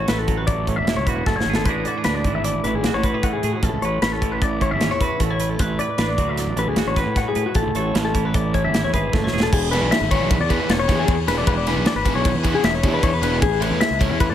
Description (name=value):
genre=math rock and midwest emo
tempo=153 BPM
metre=5/4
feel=straight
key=unclear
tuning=A4 = 437 Hz
part: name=twelve-string electric guitar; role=accompaniment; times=0.0-9.5 s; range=A2 to B4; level=-26 LUFS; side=right 10 dB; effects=none
part: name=clean electric guitar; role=arpeggios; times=0.0-14.3 s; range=F#4 to F#5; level=-23 LUFS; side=left 5 dB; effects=spring reverb, digital delay
part: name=fuzz fingered electric bass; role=bass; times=0.0-14.3 s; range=E1 to A2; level=-24 LUFS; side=equal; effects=overdrive
part: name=modern studio drum kit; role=drums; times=0.1-14.3 s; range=crash cymbal, hi-hat, kick drum, ride cymbal, snare drum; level=-22 LUFS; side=equal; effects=none
part: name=crunchy overdriven guitar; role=riff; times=9.7-14.3 s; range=E3 to G#4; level=-24 LUFS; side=right 2 dB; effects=none
room=light reverb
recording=none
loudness=-18 LUFS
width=side -10 dB against mid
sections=0.0-9.5 A section; 9.5-14.3 B section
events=drum fill 1.3-1.7, 9.1-9.5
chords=0.0 F#m9/A; 1.7 E9; 5.6 Bm7/A; 7.6 Amaj7; 9.5 E7; 13.4 Amaj9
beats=0.09 0.48 0.88 1.27 | 1.66 2.06 2.45 2.84 3.24 | 3.63 4.02 4.42 4.81 5.20 | 5.60 5.99 6.38 6.78 7.17 | 7.56 7.96 8.35 8.74 9.13 | 9.52 9.91 10.30 10.69 11.08 | 11.47 11.86 12.25 12.64 13.04 | 13.43 13.82 14.21